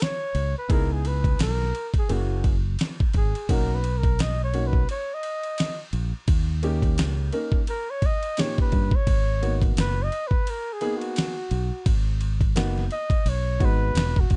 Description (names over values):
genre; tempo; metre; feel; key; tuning
hip hop, jazz-hop; 86 BPM; 4/4; swing 58% on 16ths; G# minor; A4 = 440 Hz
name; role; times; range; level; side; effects
mellow flugelhorn; melody; 0.0-14.4 s; F#4 to D#5; -32 LUFS; equal; none
dusty soul sampler-style drum kit; drums; 0.0-14.4 s; hi-hat, kick drum, ride cymbal, snare drum; -27 LUFS; equal; overdrive
fingered electric bass; bass; 0.3-14.4 s; E1 to G2; -27 LUFS; equal; none
warm grand piano; accompaniment; 0.7-14.1 s; A#2 to A#4; -33 LUFS; equal; none
room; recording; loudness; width
little or no reverb; dark, warm production, nothing above 10.5 kHz; -24 LUFS; mono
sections
0.0-14.4 A section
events
flugelhorn solo 0.0-14.4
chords
0.0 N.C.; 0.7 C#m7; 2.1 F#7; 3.5 Bmaj7; 6.3 D#7; 9.1 G#m9